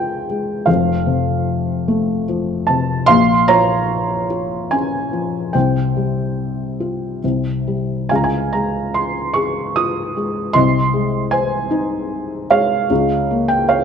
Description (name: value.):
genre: classical, lyrical solo piano.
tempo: 69-77 BPM.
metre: 3/4.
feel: rubato.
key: F minor.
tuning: A4 = 439 Hz.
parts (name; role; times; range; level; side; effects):
felt-muted upright piano; solo; 0.0-13.8 s; F1 to Eb6; -16 LUFS; equal; none.
room: moderate scoring stage reverb, RT60 1.6 s.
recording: dark, warm production.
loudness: -16 LUFS.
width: side -7 dB against mid.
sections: 0.0-13.8 A section.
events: none.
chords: 0.0 Db; 0.7 F; 3.1 Bbm; 5.5 Csus4; 7.2 C5; 8.1 Dbadd9; 10.6 Ab/C; 12.9 Bbm/Db.